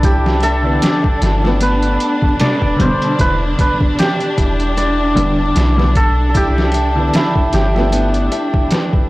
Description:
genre	trip hop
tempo	76 BPM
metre	4/4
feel	swing 55% on 16ths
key	E phrygian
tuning	A4 = 440 Hz
part	hammered dulcimer	melody	0.0-9.1 s	E4 to D5	-18 LUFS	right 1 dB	tape echo
part	warm studio violin section	sustained chords	0.0-9.1 s	D4	-21 LUFS	equal	none
part	nylon-string guitar	arpeggios	0.0-9.1 s	B3 to E5	-24 LUFS	left 2 dB	tape echo
part	soft 808-style bass	bass	0.0-8.3 s	E1 to C2	-16 LUFS	equal	none
part	trip hop sampler-style drum kit	drums	0.0-9.1 s	hi-hat, kick drum, snare drum	-17 LUFS	equal	overdrive
part	felt-muted upright piano	accompaniment	0.6-9.1 s	B2 to B3	-22 LUFS	left 1 dB	tremolo
room	studio reverb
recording	dry, gritty hardware recording, transformer saturation, vinyl crackle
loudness	-12 LUFS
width	side -19 dB against mid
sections	0.0-9.1 A section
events	none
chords	0.0 Cmaj7; 1.6 G9; 3.2 Em7; 6.3 Cmaj7; 7.9 G9

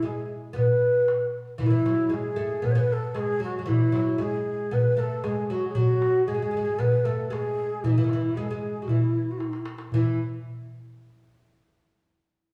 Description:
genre	Arabic maqam ensemble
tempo	115 BPM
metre	4/4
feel	straight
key	E maqam ajam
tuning	A4 = 440 Hz
part	breathy mellow ney	melody	0.0-10.2 s	D#4 to C#5	-28 LUFS	equal	none
part	oud	second line	0.0-10.2 s	D#3 to B3	-36 LUFS	equal	none
part	darbuka	percussion	0.2-10.2 s	none	-30 LUFS	equal	none
room	wet large studio reverb, RT60 1.4 s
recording	band playing live in one room, small room ambience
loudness	-25 LUFS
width	mono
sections	0.0-9.9 A section; 9.9-12.0 B section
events	drum fill 9.4-9.9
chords	none

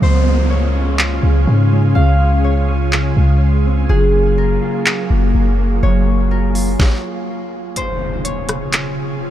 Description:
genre	hip hop, atmospheric cloud-rap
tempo	124 BPM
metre	4/4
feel	half-time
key	Db major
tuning	A4 = 439 Hz
part	concert harp	melody	0.0-9.3 s	Ab4 to F5	-24 LUFS	left 1 dB	tape echo
part	ethereal airy pad	sustained chords	0.0-9.3 s	C3 to Ab4	-21 LUFS	right 1 dB	ensemble chorus, built-in reverb, sidechain pumping
part	mellow electric guitar	arpeggios	0.0-7.8 s	Db3 to F4	-24 LUFS	equal	tape echo
part	warm 808-style bass	bass	0.0-6.8 s	Gb1 to Ab2	-14 LUFS	equal	none
part	downlifter and impact	sound effects	0.0-3.9, 7.8-9.3 s	none	-26 LUFS	right 1 dB	none
part	wind-like tuned noise texture	texture	0.0-7.7 s	Bb3 to C6	-30 LUFS	left 2 dB	built-in reverb
part	smooth R&B drum kit	drums	1.0-8.8 s	handclaps, hi-hat, kick drum, rim click, snare drum	-17 LUFS	equal	none
room	little or no reverb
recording	none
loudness	-13 LUFS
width	side -12 dB against mid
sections	0.0-7.8 A section; 7.8-9.3 B section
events	stop 6.8-7.8; break 7.8-9.3; impact 7.8-9.3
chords	0.0 Dbmaj7; 3.9 Gbmaj9; 7.8 Dbmaj7

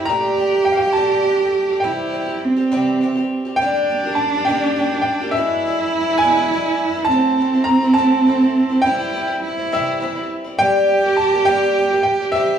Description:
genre	acoustic folk duo or small band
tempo	69 BPM (dotted quarters)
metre	6/8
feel	straight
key	G dorian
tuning	A4 = 440 Hz
part	bright upright piano	melody	0.0-12.6 s	E5 to Bb5	-20 LUFS	equal	none
part	warm cello	second line	0.0-12.6 s	C4 to G4	-18 LUFS	right 3 dB	none
part	picked twelve-string acoustic guitar	accompaniment	0.0-12.6 s	E2 to G4	-24 LUFS	left 2 dB	none
room	moderate large studio reverb, RT60 0.8 s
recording	small room ambience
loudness	-15 LUFS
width	side -8 dB against mid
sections	0.0-3.6 A section; 3.6-12.6 B section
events	none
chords	0.1 Gmadd9/Bb; 1.8 C; 3.6 Gm; 5.4 E7; 7.1 Am; 8.9 C; 10.6 Gm

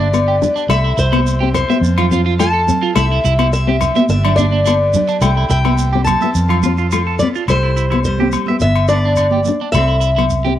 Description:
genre	highlife guitar band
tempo	106 BPM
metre	4/4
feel	straight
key	C major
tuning	A4 = 440 Hz
part	picked old ladder-braced acoustic guitar	melody	0.0-10.5 s	C5 to A5	-18 LUFS	left 2 dB	none
part	combo organ	sustained chords	0.0-7.5 s	B3 to A4	-33 LUFS	right 8 dB	cassette tape
part	electric guitar at the edge of break-up	arpeggios	0.0-10.5 s	D4 to E5	-22 LUFS	right 8 dB	phaser, cassette tape, tape echo
part	vintage muted fingered electric bass	bass	0.0-10.6 s	G1 to F2	-16 LUFS	equal	none
part	nylon-string guitar	accompaniment	0.1-10.6 s	A3 to D4	-20 LUFS	left 6 dB	cassette tape
part	agogo bells	percussion	0.1-10.3 s	none	-24 LUFS	left 13 dB	none
part	shekere	percussion	0.1-10.4 s	none	-26 LUFS	right 4 dB	none
part	congas	percussion	0.4-10.6 s	none	-23 LUFS	right 10 dB	none
part	vintage hollow-body jazz guitar	second line	7.2-10.6 s	G3 to C4	-24 LUFS	equal	cassette tape
room	little or no reverb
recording	home recording on cassette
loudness	-12 LUFS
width	side -12 dB against mid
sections	0.0-7.5 A section; 7.5-10.6 B section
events	none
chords	0.0 G; 0.7 C; 1.8 F; 3.0 C; 4.1 G; 5.2 C; 6.4 F; 7.5 C; 8.6 G; 9.7 C

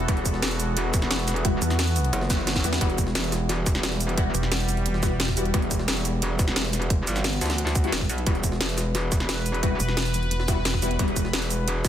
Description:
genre	dark technical drum and bass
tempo	176 BPM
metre	4/4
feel	straight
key	E minor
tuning	A4 = 441 Hz
part	sweeping resonant pad	sustained chords	0.0-11.9 s	E3 to B4	-31 LUFS	equal	chorus, sidechain pumping
part	pulsing pluck wobble bass	bass	0.0-5.5, 9.8-11.0 s	E1 to E2	-25 LUFS	equal	chorus
part	drum and bass drum kit	drums	0.0-11.9 s	cabasa, hi-hat, snare drum	-28 LUFS	equal	overdrive, studio reverb
part	orchestra-hit-like synth stab	stabs	0.1-5.6, 7.8-11.1 s	G3 to F#4	-32 LUFS	left 3 dB	built-in reverb, phaser, ping-pong delay
part	metallic wobble bass	bass	0.1-11.9 s	E1 to D2	-27 LUFS	equal	distortion, chorus, overdrive, sidechain pumping
part	electronic kick drum	drums	0.1-11.9 s	none	-25 LUFS	equal	overdrive, studio reverb
part	jungle sampler-style drum kit	drums	0.1-11.9 s	hi-hat, snare drum	-36 LUFS	left 1 dB	none
room	light reverb, digital ambience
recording	dense, heavily limited modern master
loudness	-22 LUFS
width	side -10 dB against mid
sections	0.0-11.9 A section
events	drum fill 2.3-2.8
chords	0.0 Emadd9

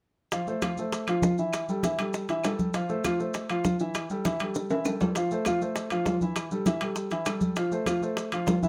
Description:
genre	latin, salsa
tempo	199 BPM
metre	4/4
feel	straight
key	unclear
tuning	A4 = 440 Hz
part	warm grand piano	accompaniment	0.3-8.7 s	E3 to F5	-31 LUFS	equal	none
part	bongos	percussion	0.3-8.6 s	none	-37 LUFS	equal	none
part	congas	percussion	0.3-8.7 s	none	-33 LUFS	equal	none
part	maracas	percussion	0.3-8.7 s	none	-46 LUFS	equal	none
part	timbales	percussion	0.3-8.6 s	none	-36 LUFS	equal	none
part	claves	percussion	0.6-8.5 s	none	-43 LUFS	equal	none
room	moderate studio reverb, RT60 0.8 s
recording	close, detailed microphones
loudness	-28 LUFS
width	mono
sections	0.3-8.7 A section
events	drum fill 4.2-5.2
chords	0.3 Fmaj7; 1.5 A5; 2.7 Fmaj7; 3.9 A5; 5.2 Fmaj7; 6.4 A5; 7.6 Fmaj7

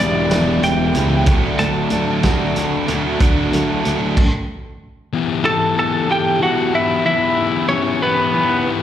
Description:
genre	quiet-loud alternative rock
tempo	62 BPM (dotted quarters)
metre	6/8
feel	straight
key	E minor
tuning	A4 = 441 Hz
part	twelve-string electric guitar	melody	0.0-8.7 s	B3 to A5	-18 LUFS	right 1 dB	spring reverb, slapback echo, plate reverb
part	fingerpicked steel-string acoustic guitar	arpeggios	0.0-4.2 s	E2 to G4	-25 LUFS	right 2 dB	plate reverb
part	biting overdriven guitar	riff	0.0-4.2 s	D3 to E4	-23 LUFS	right 10 dB	slapback echo
part	thick fuzz guitar	riff	0.0-8.8 s	D3 to G4	-20 LUFS	left 7 dB	distortion, slapback echo
part	fuzz picked electric bass	bass	0.0-4.1 s	E1 to D2	-21 LUFS	right 1 dB	overdrive
part	loose indie drum kit	drums	0.3-4.3 s	crash cymbal, hi-hat, kick drum, snare drum	-19 LUFS	right 1 dB	none
room	moderate club reverb, RT60 0.5 s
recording	live gig heard through the venue's PA, recital hall reverb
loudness	-15 LUFS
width	side -10 dB against mid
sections	0.0-5.1 A section; 5.1-8.8 B section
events	clean electric guitar solo 0.0-5.1; stop 4.2-5.1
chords	0.0 Em; 1.3 D; 5.1 Em

